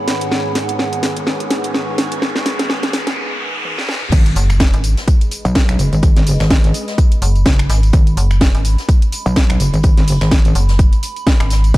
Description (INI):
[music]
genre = bass house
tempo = 126 BPM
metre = 4/4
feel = swing 57% on 16ths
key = G# minor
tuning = A4 = 441 Hz
[part]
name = sweeping resonant pad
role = sustained chords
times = 0.0-11.8 s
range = G#2 to D#5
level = -28 LUFS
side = left 1 dB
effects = chorus, sidechain pumping
[part]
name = riser and impact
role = sound effects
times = 0.0-6.0 s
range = none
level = -26 LUFS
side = equal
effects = none
[part]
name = warbly tape-like pad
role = texture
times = 0.0-11.8 s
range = G#4 to C#6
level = -28 LUFS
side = right 3 dB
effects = chorus, built-in reverb, sidechain pumping
[part]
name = house drum kit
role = drums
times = 0.1-11.8 s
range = crash cymbal, finger snaps, hi-hat, snare drum, tambourine, toms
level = -20 LUFS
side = equal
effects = overdrive
[part]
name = metallic wobble bass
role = bass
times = 4.1-11.8 s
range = F#1 to B1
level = -15 LUFS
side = equal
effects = distortion, chorus, tube saturation, sidechain pumping
[part]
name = electronic kick drum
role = drums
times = 4.1-11.8 s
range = none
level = -12 LUFS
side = equal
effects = overdrive
[part]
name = jazz brush drum kit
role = drums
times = 4.1-11.8 s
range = hi-hat, snare drum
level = -31 LUFS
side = left 2 dB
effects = sidechain pumping on hats, high-pass filter on hats, high-pass filter on snare, high-pass filter on room
[part]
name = metallic FM bass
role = bass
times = 4.4-11.7 s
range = F#1 to G#1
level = -13 LUFS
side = equal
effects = tube saturation, sidechain pumping
[sound]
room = little or no reverb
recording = dark, warm production, high-pass filter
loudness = -12 LUFS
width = side -18 dB against mid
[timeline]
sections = 0.0-4.1 A section; 4.1-11.8 B section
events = build-up 0.0-4.1; drum fill 0.0-3.2, 3.6-4.1; riser 0.0-4.1; filter sweep 0.0-4.1; break 3.2-4.1; drop 4.1-11.8; impact 4.1-6.0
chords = 0.0 G#m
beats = | 0.31 0.79 1.27 1.74 | 2.22 2.69 3.17 3.65 | 4.12 4.60 5.08 5.55 | 6.03 6.50 6.98 7.46 | 7.93 8.41 8.89 9.36 | 9.84 10.31 10.79 11.27 | 11.74